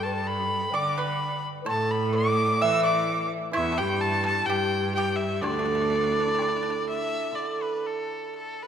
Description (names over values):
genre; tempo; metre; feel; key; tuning
chinese traditional, Chinese chamber ensemble; 63 BPM; 2/4; straight; D zhi mode; A4 = 440 Hz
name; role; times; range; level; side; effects
clear erhu; melody; 0.0-8.7 s; A4 to E6; -28 LUFS; left 2 dB; none
bright cello; second line; 0.0-6.9 s; D2 to E3; -30 LUFS; right 4 dB; none
mellow hollow xiao; second line; 0.0-6.9 s; D4 to E5; -32 LUFS; left 5 dB; none
pipa; second line; 0.0-6.8 s; D4 to E5; -32 LUFS; right 4 dB; none
hammered dulcimer; accompaniment; 0.0-8.7 s; A2 to A4; -30 LUFS; right 3 dB; none
woodblock; percussion; 0.7-6.6 s; none; -39 LUFS; left 1 dB; none
room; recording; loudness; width
wet concert hall reverb, RT60 2.5 s; none; -23 LUFS; side -8 dB against mid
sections
0.0-7.4 A section; 7.4-8.7 B section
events
none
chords
none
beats
0.72 | 1.67 2.61 | 3.54 4.48 | 5.43 6.39 | 7.36 8.32